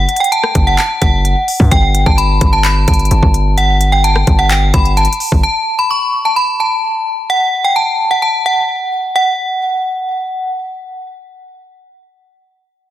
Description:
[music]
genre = hip hop, trap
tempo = 129 BPM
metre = 4/4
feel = half-time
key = unclear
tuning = A4 = 444 Hz
[part]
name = metallic FM bell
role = melody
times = 0.0-10.5 s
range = F#5 to C#6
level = -14 LUFS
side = equal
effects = chorus, digital delay
[part]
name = distorted 808-style bass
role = bass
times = 0.0-5.4 s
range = F#1 to F#2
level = -13 LUFS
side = equal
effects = distortion
[part]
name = trap drum kit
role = drums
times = 0.1-5.4 s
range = handclaps, hi-hat, kick drum, rim click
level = -14 LUFS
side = equal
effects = none
[sound]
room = little or no reverb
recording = dense, heavily limited modern master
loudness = -11 LUFS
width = side -13 dB against mid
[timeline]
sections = 0.0-5.4 A section; 5.4-9.2 B section; 9.2-12.9 C section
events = none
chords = 0.0 F#m; 1.7 Gsus2; 5.4 N.C.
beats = 0.32 0.78 1.25 | 1.72 2.18 2.65 3.11 | 3.58 4.04 4.50 4.97 | 5.44 5.90 6.37 6.83 | 7.30 7.76 8.23 8.69 | 9.16 9.62 10.09

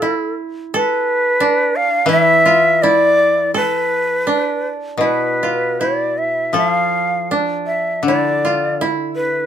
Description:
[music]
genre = japanese traditional, Japanese chamber music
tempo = 75-88 BPM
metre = 4/4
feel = rubato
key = D kumoi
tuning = A4 = 439 Hz
[part]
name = breathy bright shakuhachi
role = melody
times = 0.0-9.5 s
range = A4 to F5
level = -15 LUFS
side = equal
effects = none
[part]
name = koto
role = second line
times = 0.0-9.5 s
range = D4 to A4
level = -20 LUFS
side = right 3 dB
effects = none
[part]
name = koto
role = accompaniment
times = 2.1-9.5 s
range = B2 to F3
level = -22 LUFS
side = left 4 dB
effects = none
[sound]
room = light reverb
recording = none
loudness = -14 LUFS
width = side -9 dB against mid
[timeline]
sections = 0.0-9.5 A section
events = none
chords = none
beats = 0.01 | 0.69 1.38 2.08 2.80 | 3.53 4.26 5.00 5.77 | 6.55 7.31 8.06 8.80

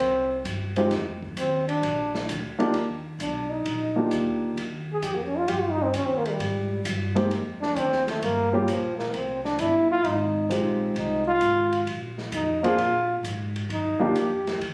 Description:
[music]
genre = jazz, small-group swing and bop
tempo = 131 BPM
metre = 4/4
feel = swing 68% on 8ths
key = Eb major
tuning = A4 = 440 Hz
[part]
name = warm trombone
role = second line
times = 0.0-14.6 s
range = Db3 to Ab4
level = -27 LUFS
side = equal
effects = none
[part]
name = upright bass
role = bass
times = 0.0-14.7 s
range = G1 to Bb2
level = -35 LUFS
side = equal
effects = none
[part]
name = open jazz drum kit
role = drums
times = 0.0-14.7 s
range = hi-hat, kick drum, ride cymbal, snare drum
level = -38 LUFS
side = equal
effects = none
[part]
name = dark baby grand piano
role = accompaniment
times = 0.8-14.1 s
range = G3 to Ab4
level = -26 LUFS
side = equal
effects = none
[sound]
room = light reverb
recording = recorded on a phone in the room, club reverb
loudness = -26 LUFS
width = mono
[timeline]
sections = 0.0-2.7 A section; 2.7-14.7 A section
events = trombone solo 0.0-14.7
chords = 0.0 C5; 0.9 Cmadd11; 1.8 Bb; 2.7 Ebmaj7; 4.6 Eb; 6.4 Abmaj7(no3); 8.2 Gm7b5; 9.1 C5; 10.0 Fm7; 11.9 Bb7(no3); 13.7 Ebmaj7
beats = 0.00 0.46 | 0.91 1.37 1.82 2.28 | 2.74 3.19 3.65 4.11 | 4.57 5.02 5.48 5.94 | 6.39 6.85 7.31 7.76 | 8.22 8.68 9.13 9.59 | 10.05 10.50 10.96 11.42 | 11.87 12.33 12.79 13.24 | 13.70 14.15 14.61

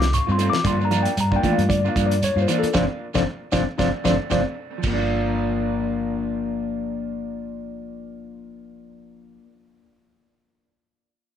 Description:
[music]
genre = afrobeat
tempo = 114 BPM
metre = 4/4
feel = swing 56% on 16ths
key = G minor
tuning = A4 = 440 Hz
[part]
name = mellow tine electric piano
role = accompaniment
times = 0.0-4.4 s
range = A3 to D6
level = -24 LUFS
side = left 2 dB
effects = medium stereo tremolo
[part]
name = clean electric guitar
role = arpeggios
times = 0.0-5.0 s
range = G2 to F3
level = -26 LUFS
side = left 4 dB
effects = none
[part]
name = electric guitar at the edge of break-up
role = stabs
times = 0.0-9.6 s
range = F3 to F4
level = -26 LUFS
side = equal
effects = tape echo
[part]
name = hollow-body short-scale fingered electric bass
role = bass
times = 0.0-9.4 s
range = G1 to G2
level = -24 LUFS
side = equal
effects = none
[part]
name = warm soul drum kit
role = drums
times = 0.0-5.0 s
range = crash cymbal, hi-hat, kick drum, snare drum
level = -28 LUFS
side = equal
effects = none
[part]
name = shekere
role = percussion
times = 0.0-5.0 s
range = none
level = -32 LUFS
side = right 6 dB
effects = none
[sound]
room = moderate small room reverb, RT60 0.5 s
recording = none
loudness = -20 LUFS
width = side -9 dB against mid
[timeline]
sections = 0.0-4.8 A section; 4.8-9.1 B section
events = tine electric piano solo 0.0-4.8; band accent 2.7-4.8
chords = 0.0 Dm7; 0.6 Gm7; 2.7 Dm7/G; 4.8 Gm7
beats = 0.12 | 0.65 1.17 1.69 2.22 | 2.74 3.27 3.79 4.32 | 4.85 5.37 5.90 6.42 | 6.95 7.47 8.00 8.53

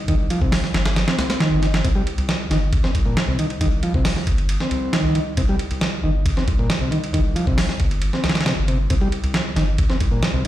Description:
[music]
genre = breakbeat, breaks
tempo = 136 BPM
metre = 4/4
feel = straight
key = C minor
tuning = A4 = 439 Hz
[part]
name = saturated sub bass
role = bass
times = 0.0-10.5 s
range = G1 to C2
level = -23 LUFS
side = equal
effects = none
[part]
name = combo organ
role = riff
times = 0.1-10.5 s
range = Bb2 to C4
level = -24 LUFS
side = equal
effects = dub echo
[part]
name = dusty soul sampler-style drum kit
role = drums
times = 0.1-10.5 s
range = hi-hat, kick drum, ride cymbal, snare drum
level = -21 LUFS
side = equal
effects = none
[sound]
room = light reverb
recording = played on a big sound system in a bare room, stone room reverb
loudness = -18 LUFS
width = side -14 dB against mid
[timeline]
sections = 0.0-10.5 A section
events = none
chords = 0.0 C5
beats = | 0.08 0.52 0.96 1.40 | 1.84 2.29 2.73 3.17 | 3.61 4.05 4.49 4.93 | 5.38 5.82 6.26 6.70 | 7.14 7.58 8.02 8.46 | 8.90 9.35 9.79 10.23

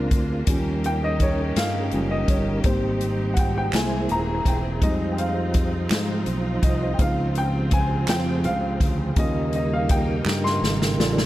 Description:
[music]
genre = slow gospel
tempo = 55 BPM (dotted quarters)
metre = 6/8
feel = straight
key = unclear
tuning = A4 = 440 Hz
[part]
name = warm upright piano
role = accompaniment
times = 0.0-11.3 s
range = D3 to C6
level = -27 LUFS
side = left 1 dB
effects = none
[part]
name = bright studio string section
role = sustained chords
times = 0.0-11.3 s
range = Db3 to Ab4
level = -35 LUFS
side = left 1 dB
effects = none
[part]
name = mellow tonewheel organ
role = sustained chords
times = 0.0-11.3 s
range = Db3 to D5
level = -28 LUFS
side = right 3 dB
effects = slow rotary speaker, chorus vibrato
[part]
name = fingered electric bass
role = bass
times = 0.0-11.3 s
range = Eb1 to Ab2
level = -26 LUFS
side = equal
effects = none
[part]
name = swinging big-band drum kit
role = drums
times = 0.1-11.3 s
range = hi-hat, kick drum, snare drum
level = -24 LUFS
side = equal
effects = none
[part]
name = group handclap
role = percussion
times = 3.7-10.6 s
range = none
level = -32 LUFS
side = right 6 dB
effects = none
[sound]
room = light reverb, small room ambience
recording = none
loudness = -20 LUFS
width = side -15 dB against mid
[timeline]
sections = 0.0-11.3 A section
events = upright piano solo 0.0-11.3; drum fill 10.3-11.3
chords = 0.5 Eb7; 2.7 Abmaj7; 3.7 C7b13; 4.8 Fm7; 7.0 Dbmaj7; 9.2 Eb7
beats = | 0.48 1.56 | 2.65 3.74 | 4.82 5.91 | 7.00 8.08 | 9.17 10.26

